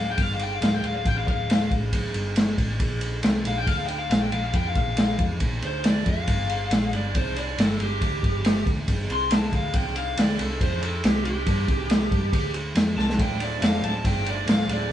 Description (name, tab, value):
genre	blues rock power trio and southern rock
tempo	138 BPM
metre	4/4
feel	straight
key	D minor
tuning	A4 = 441 Hz
part	lead guitar through a small cranked amp	melody	0.0-14.9 s	G4 to C6	-29 LUFS	left 2 dB	overdrive
part	hollow-body short-scale picked electric bass	bass	0.0-14.9 s	D1 to G2	-29 LUFS	equal	none
part	vintage drum kit	drums	0.2-14.8 s	kick drum, ride cymbal, snare drum	-23 LUFS	equal	none
part	overdriven tonewheel organ	sustained chords	13.2-14.9 s	F3 to D4	-35 LUFS	right 4 dB	chorus vibrato, slow rotary speaker
room	light reverb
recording	band playing live in one room, nothing above 10.6 kHz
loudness	-21 LUFS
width	side -11 dB against mid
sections	0.0-14.9 A section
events	lead electric guitar solo 0.0-14.9; drum fill 13.0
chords	0.0 Dm; 2.8 Bb5; 6.3 G5; 9.7 C5; 13.2 Dm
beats	0.18 0.61 | 1.05 1.49 1.92 2.36 | 2.79 3.23 3.67 4.10 | 4.54 4.97 5.41 5.84 | 6.28 6.71 7.15 7.58 | 8.01 8.45 8.88 9.31 | 9.74 10.17 10.60 11.04 | 11.47 11.90 12.33 12.76 | 13.19 13.62 14.05 14.48 | 14.91